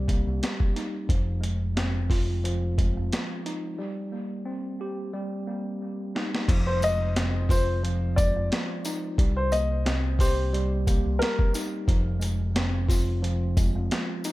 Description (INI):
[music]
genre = hip hop, boom-bap hip-hop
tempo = 89 BPM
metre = 4/4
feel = swing 55% on 16ths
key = F minor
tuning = A4 = 440 Hz
[part]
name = mellow tine electric piano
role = accompaniment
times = 0.0-14.3 s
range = F3 to G4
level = -31 LUFS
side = right 1 dB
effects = medium stereo tremolo, cassette tape, high-pass filter, low-pass filter, dub echo
[part]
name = fingered electric bass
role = bass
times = 0.0-13.9 s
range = F1 to C2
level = -27 LUFS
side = equal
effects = none
[part]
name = boom bap sampler-style drum kit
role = drums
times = 0.1-14.3 s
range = crash cymbal, hi-hat, kick drum, snare drum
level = -26 LUFS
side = equal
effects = vintage 12-bit sampler grit
[part]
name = warm upright piano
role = melody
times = 6.7-11.5 s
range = Bb4 to Eb5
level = -29 LUFS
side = left 2 dB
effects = high-pass filter, low-pass filter, dub echo
[part]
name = tambourine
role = percussion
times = 6.8-14.3 s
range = none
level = -41 LUFS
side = left 3 dB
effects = dub echo
[sound]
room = little or no reverb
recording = echo-heavy mix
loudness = -24 LUFS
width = side -18 dB against mid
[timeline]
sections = 0.0-6.5 A section; 6.5-14.3 B section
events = break 0.0-1.1, 3.8-6.5; drum fill 5.8-6.5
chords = 0.0 Cm7; 1.1 Fm7; 3.8 Cm7; 6.5 Fm7; 9.2 Cm7; 11.9 Fm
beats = 0.42 | 1.09 1.77 2.44 3.12 | 3.79 4.46 5.14 5.81 | 6.49 7.16 7.83 8.51 | 9.18 9.86 10.53 11.21 | 11.88 12.55 13.23 13.90